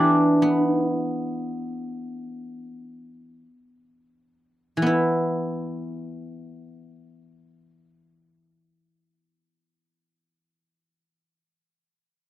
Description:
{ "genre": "chinese traditional, Chinese solo plucked strings", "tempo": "free time", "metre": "none", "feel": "none", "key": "E yu mode", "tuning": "A4 = 440 Hz", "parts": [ { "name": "guzheng", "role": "solo", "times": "0.0-11.4 s", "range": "E3 to A5", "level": "-22 LUFS", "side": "equal", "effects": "none" } ], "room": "light reverb", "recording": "dry, close 1970s-style studio recording", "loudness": "-22 LUFS", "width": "side -14 dB against mid", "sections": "0.0-4.9 A section; 4.9-10.4 B section", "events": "slowing down 0.0-4.9", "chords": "none" }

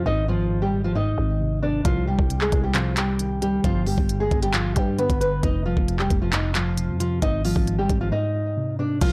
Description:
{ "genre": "hip hop, trap", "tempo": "134 BPM", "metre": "4/4", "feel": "half-time", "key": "unclear", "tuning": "A4 = 441 Hz", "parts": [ { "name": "nylon-string guitar", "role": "melody", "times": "0.0-9.1 s", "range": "F3 to Eb5", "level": "-27 LUFS", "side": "equal", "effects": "delay" }, { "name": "muted felt-like synth keys", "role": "accompaniment", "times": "0.0-9.1 s", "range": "F2 to Eb3", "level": "-30 LUFS", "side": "equal", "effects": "chorus" }, { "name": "growling 808-style bass", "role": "bass", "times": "0.0-9.1 s", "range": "F1 to G2", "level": "-29 LUFS", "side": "equal", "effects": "none" }, { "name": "trap drum kit", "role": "drums", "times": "1.9-9.1 s", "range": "crash cymbal, handclaps, hi-hat, kick drum", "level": "-26 LUFS", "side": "equal", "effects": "none" }, { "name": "ethereal airy pad", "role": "sustained chords", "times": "9.0-9.1 s", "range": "none", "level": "barely audible", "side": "none", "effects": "none" } ], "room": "digital ambience", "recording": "blown-out, overdriven recording, overdrive", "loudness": "-23 LUFS", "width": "mono", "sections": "0.0-9.0 A section", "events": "break 8.1-9.0", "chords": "0.1 Ab; 1.9 Cm; 3.6 G; 5.4 F5; 7.2 Ab" }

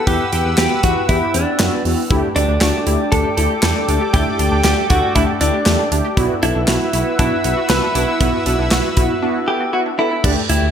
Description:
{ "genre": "synth-pop", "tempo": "118 BPM", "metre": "4/4", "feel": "straight", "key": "unclear", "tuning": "A4 = 440 Hz", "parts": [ { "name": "direct-recorded clean electric guitar", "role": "melody", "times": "0.0-10.7 s", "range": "D4 to B4", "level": "-20 LUFS", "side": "equal", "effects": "lush chorus" }, { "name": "sweeping resonant pad", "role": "sustained chords", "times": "0.0-10.2 s", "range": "A4 to E6", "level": "-24 LUFS", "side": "equal", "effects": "chorus" }, { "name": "mellow synth brass", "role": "accompaniment", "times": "0.1-10.7 s", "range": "A3 to A4", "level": "-22 LUFS", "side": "equal", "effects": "chorus" }, { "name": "smooth synth bass", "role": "bass", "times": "0.1-10.7 s", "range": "B1 to F#2", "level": "-20 LUFS", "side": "equal", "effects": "none" }, { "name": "modern studio drum kit", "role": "drums", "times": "0.1-10.6 s", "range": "crash cymbal, handclaps, hi-hat, kick drum, snare drum", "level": "-19 LUFS", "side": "right 1 dB", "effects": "none" }, { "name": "wide unison pluck", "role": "arpeggios", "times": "2.1-10.2 s", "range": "D4 to G4", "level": "-26 LUFS", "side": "left 2 dB", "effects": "wide subtle chorus, digital delay" } ], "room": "moderate lush hall reverb, RT60 1.6 s, small room ambience", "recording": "bright 1980s-style digital production", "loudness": "-14 LUFS", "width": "side -8 dB against mid", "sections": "0.0-10.2 A section", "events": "silent gap 9.2-10.2", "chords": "0.0 Emadd9; 2.1 Dsus4; 6.2 Bsus4" }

